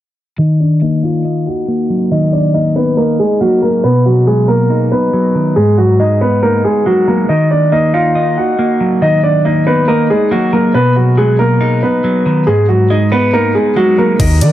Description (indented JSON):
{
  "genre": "hip hop, drill",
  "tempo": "139 BPM",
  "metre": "4/4",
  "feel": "half-time",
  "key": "Eb harmonic minor",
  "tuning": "A4 = 441 Hz",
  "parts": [
    { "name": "dark baby grand piano", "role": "melody", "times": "0.4-14.5 s", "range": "Gb3 to Gb5", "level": "-13 LUFS", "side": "equal", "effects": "low-pass filter, analog delay" },
    { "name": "electric guitar at the edge of break-up", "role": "accompaniment", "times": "0.4-14.5 s", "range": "Ab2 to Eb5", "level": "-13 LUFS", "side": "equal", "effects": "phaser, low-pass filter, analog delay" },
    { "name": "long sustained 808-style bass", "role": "bass", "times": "14.2-14.5 s", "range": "Eb2 to Eb3", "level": "-11 LUFS", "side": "equal", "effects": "none" },
    { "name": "drill drum kit", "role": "drums", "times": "14.2-14.5 s", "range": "crash cymbal, hi-hat, kick drum", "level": "-15 LUFS", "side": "equal", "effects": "overdrive" }
  ],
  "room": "light reverb, digital ambience",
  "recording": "echo-heavy mix",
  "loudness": "-10 LUFS",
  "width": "side -13 dB against mid",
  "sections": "0.4-14.2 A section",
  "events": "filter sweep 0.4-14.2",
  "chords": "0.4 Ebm; 3.8 B; 5.6 Abm7; 7.3 Ebm; 10.7 B; 12.5 Abm7",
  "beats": "| 0.38 0.82 1.25 1.68 | 2.11 2.54 2.97 3.41 | 3.84 4.27 4.70 5.13 | 5.56 6.00 6.43 6.86 | 7.29 7.72 8.15 8.59 | 9.02 9.45 9.88 10.31 | 10.74 11.18 11.61 12.04 | 12.47 12.90 13.33 13.77 | 14.20"
}